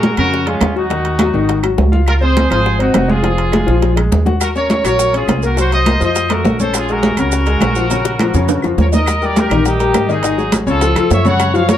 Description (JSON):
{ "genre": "latin, salsa", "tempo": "206 BPM", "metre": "4/4", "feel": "straight", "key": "Bb minor", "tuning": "A4 = 440 Hz", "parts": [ { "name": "bright trumpet section", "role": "melody", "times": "0.0-11.8 s", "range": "Db4 to Gb5", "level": "-18 LUFS", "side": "right 1 dB", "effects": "slapback echo" }, { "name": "bright baby grand piano", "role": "accompaniment", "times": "0.0-11.8 s", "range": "Db3 to Gb5", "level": "-17 LUFS", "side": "left 4 dB", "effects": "none" }, { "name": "upright bass", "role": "bass", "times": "0.0-11.8 s", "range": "F1 to Bb2", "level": "-17 LUFS", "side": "right 1 dB", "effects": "none" }, { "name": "bongos", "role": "percussion", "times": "0.0-11.8 s", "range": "none", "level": "-24 LUFS", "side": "left 6 dB", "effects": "none" }, { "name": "congas", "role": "percussion", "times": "0.0-11.8 s", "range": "none", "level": "-20 LUFS", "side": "equal", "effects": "none" }, { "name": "timbales", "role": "percussion", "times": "0.0-11.8 s", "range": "none", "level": "-23 LUFS", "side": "right 6 dB", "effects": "none" }, { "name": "claves", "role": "percussion", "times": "0.2-11.5 s", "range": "none", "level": "-31 LUFS", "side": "left 6 dB", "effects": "none" }, { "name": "maracas", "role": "percussion", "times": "4.4-11.8 s", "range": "none", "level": "-28 LUFS", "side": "right 7 dB", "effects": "none" } ], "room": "moderate small room reverb, RT60 0.6 s", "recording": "dark, warm production", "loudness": "-12 LUFS", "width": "side -11 dB against mid", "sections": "0.0-9.1 A section; 9.1-11.8 B section", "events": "drum fill 3.7-4.4, 7.9-9.1", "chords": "0.0 Bbm7; 0.9 Ebm; 1.5 Ab5; 2.1 Dbmaj7; 3.2 Fmadd11; 3.8 Bb5; 4.4 Ebm7; 5.6 Cm7b5; 6.2 F; 6.7 Bbm7; 9.1 Eb; 10.2 Ab5; 10.8 Dbaug" }